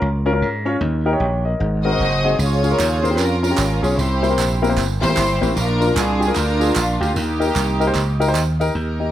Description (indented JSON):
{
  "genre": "uptempo gospel",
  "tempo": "151 BPM",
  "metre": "4/4",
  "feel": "swing 63% on 8ths",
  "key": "unclear",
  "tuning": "A4 = 443 Hz",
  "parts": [
    { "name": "warm baby grand piano", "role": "accompaniment", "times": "0.0-9.1 s", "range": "Ab2 to G5", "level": "-21 LUFS", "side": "left 2 dB", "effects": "none" },
    { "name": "slap bass", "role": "bass", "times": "0.0-9.1 s", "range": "Gb1 to Ab2", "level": "-20 LUFS", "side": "right 1 dB", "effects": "none" },
    { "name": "warm studio string section", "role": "melody", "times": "1.8-9.1 s", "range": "Bb3 to Eb5", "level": "-22 LUFS", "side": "right 1 dB", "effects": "none" },
    { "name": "tambourine and handclaps", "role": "percussion", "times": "2.4-8.7 s", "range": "none", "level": "-28 LUFS", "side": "right 7 dB", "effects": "none" }
  ],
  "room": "light reverb, small room reverb",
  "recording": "none",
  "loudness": "-16 LUFS",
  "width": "side -12 dB against mid",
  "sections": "0.0-8.8 A section",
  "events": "none",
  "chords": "0.0 Bbm; 0.8 Eb; 1.6 Ab9; 2.4 Db; 4.0 C7; 5.6 Bb; 7.2 Eb"
}